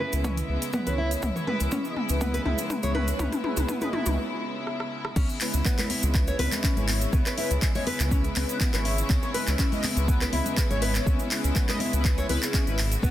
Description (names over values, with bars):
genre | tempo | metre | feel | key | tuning
afro house | 122 BPM | 4/4 | swing 53% on 16ths | C# minor | A4 = 440 Hz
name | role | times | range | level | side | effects
rich studio string section | sustained chords | 0.0-13.1 s | C#3 to F#4 | -34 LUFS | left 1 dB | sidechain pumping, low-pass filter
nylon-string guitar | arpeggios | 0.0-13.1 s | B3 to C#5 | -33 LUFS | right 1 dB | sidechain pumping, low-pass filter, tape echo
mellow synth brass | stabs | 0.1-12.8 s | G#3 to D#5 | -33 LUFS | left 1 dB | chorus, phaser, sidechain pumping, tape echo
round analog bass | bass | 0.1-13.1 s | G#1 to C#2 | -27 LUFS | equal | sidechain pumping
deep house drum kit | drums | 0.1-13.0 s | crash cymbal, handclaps, hi-hat, rim click, toms | -31 LUFS | left 1 dB | none
cabasa | percussion | 0.1-13.1 s | none | -38 LUFS | right 3 dB | none
electronic kick drum | drums | 0.2-13.1 s | none | -25 LUFS | equal | high-pass filter on kick
congas | percussion | 5.2-13.1 s | none | -34 LUFS | left 3 dB | none
room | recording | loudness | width
light reverb, small room ambience | dense, heavily limited modern master | -23 LUFS | side -13 dB against mid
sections
0.0-5.2 A section; 5.2-13.1 B section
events
build-up 0.0-5.2; drum fill 0.0-4.2, 4.7-5.2; filter sweep on analog polysynth 0.0-5.2; break 4.2-5.2; drop 5.2-13.1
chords
0.0 C#m7